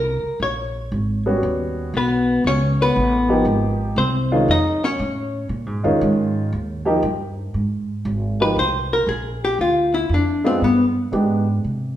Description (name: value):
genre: jazz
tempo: 118 BPM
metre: 4/4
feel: swing 67% on 8ths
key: unclear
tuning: A4 = 440 Hz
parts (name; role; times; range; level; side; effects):
- archtop guitar, miked and amplified; melody; 0.0-10.8 s; B3 to Eb5; -19 LUFS; left 2 dB; none
- upright bass; bass; 0.0-12.0 s; Ab1 to C3; -22 LUFS; right 1 dB; none
- warm baby grand piano; accompaniment; 1.3-11.4 s; Eb3 to G4; -21 LUFS; equal; none
room: wet large studio reverb, RT60 1.3 s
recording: band playing live in one room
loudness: -18 LUFS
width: side -12 dB against mid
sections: 0.0-7.5 A section; 7.5-12.0 B section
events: none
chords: 0.0 Bbm9; 1.4 Eb7alt; 3.5 Abmaj7; 4.5 Faug7; 5.5 Bbm7; 6.5 Eb; 7.5 Abadd9; 9.6 Dm; 10.6 G